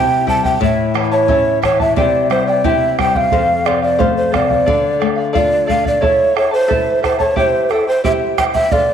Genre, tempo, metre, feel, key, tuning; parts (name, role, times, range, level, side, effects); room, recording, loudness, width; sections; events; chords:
andean folk, Andean ensemble; 89 BPM; 2/4; straight; A4 = 437 Hz
breathy mellow large quena; melody; 0.0-8.9 s; A4 to A5; -15 LUFS; right 2 dB
charango; accompaniment; 0.0-8.9 s; E4 to A5; -19 LUFS; left 1 dB
nylon-string guitar; accompaniment; 0.0-6.0 s; F2 to F4; -19 LUFS; left 10 dB
bombo; percussion; 0.3-8.9 s; -21 LUFS; right 5 dB
moderate plate reverb, RT60 2.5 s; 1960s-style stereo; -12 LUFS; side -8 dB against mid
0.0-6.0 A section; 6.0-8.9 A section
0.0 C; 0.6 A; 2.0 C; 3.3 F; 4.7 Dm; 6.0 A; 7.4 C